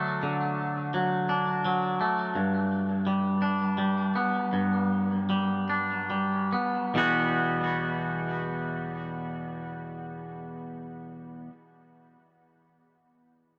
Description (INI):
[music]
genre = rock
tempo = 45-57 BPM (dotted quarters)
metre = 6/8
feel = straight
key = E minor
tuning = A4 = 437 Hz
[part]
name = twangy electric guitar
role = arpeggios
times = 0.0-11.5 s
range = E2 to F#4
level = -28 LUFS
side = equal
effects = digital delay
[sound]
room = light reverb, digital ambience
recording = dark, warm production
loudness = -28 LUFS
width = mono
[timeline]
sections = 0.0-7.0 A section; 7.0-12.2 B section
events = slowing down 2.4-7.0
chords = 0.0 D; 2.4 G; 7.0 Emadd9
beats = | 0.23 1.29 | 2.35 3.42 | 4.53 5.69 | 6.96 8.28 | 9.60 10.92